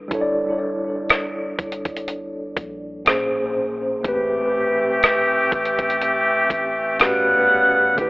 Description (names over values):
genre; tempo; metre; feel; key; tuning
contemporary R&B; 61 BPM; 4/4; swing 54% on 16ths; A dorian; A4 = 440 Hz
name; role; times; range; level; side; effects
mellow tine electric piano; accompaniment; 0.0-8.1 s; A2 to D5; -22 LUFS; equal; medium stereo tremolo, tape echo
warm 808-style bass; bass; 0.0-8.1 s; G1 to D2; -40 LUFS; equal; none
crisp 8-bit digital drum machine; drums; 0.1-8.1 s; hi-hat, kick drum, rim click; -20 LUFS; equal; none
bright woodwind section; sustained chords; 4.0-8.1 s; C#3 to F#5; -18 LUFS; equal; sidechain pumping
room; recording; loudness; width
moderate plate reverb, RT60 2.7 s; echo-heavy mix, telephone sound; -18 LUFS; side -24 dB against mid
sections
0.0-8.1 A section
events
none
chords
0.0 G69; 3.1 Bbm7; 4.0 Am7; 7.0 A13